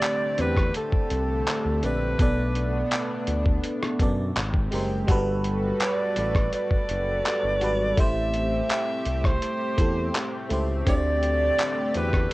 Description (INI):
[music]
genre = contemporary R&B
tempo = 83 BPM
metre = 4/4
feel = straight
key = G major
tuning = A4 = 440 Hz
[part]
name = warm alto saxophone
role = melody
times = 0.0-12.3 s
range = A4 to E5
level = -27 LUFS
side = right 1 dB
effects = none
[part]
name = FM electric piano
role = accompaniment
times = 0.0-12.3 s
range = B2 to D5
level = -30 LUFS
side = right 1 dB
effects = chorus, cassette tape
[part]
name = chorused pulse-width pad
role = sustained chords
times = 0.0-12.3 s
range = D3 to B4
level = -31 LUFS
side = left 1 dB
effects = sidechain pumping, cassette tape
[part]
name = dusty soul sampler-style drum kit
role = drums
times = 0.0-12.3 s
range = handclaps, hi-hat, kick drum, rim click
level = -25 LUFS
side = equal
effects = cassette tape
[part]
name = smooth synth bass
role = bass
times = 0.4-12.3 s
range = F#1 to F#2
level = -28 LUFS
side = equal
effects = none
[sound]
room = light reverb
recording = home recording on cassette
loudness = -22 LUFS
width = side -19 dB against mid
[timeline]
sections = 0.0-12.3 A section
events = none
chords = 0.0 D7sus4; 2.2 Bm7; 4.4 Abmaj9; 5.1 Gmaj9; 8.0 Am7; 10.9 D7sus4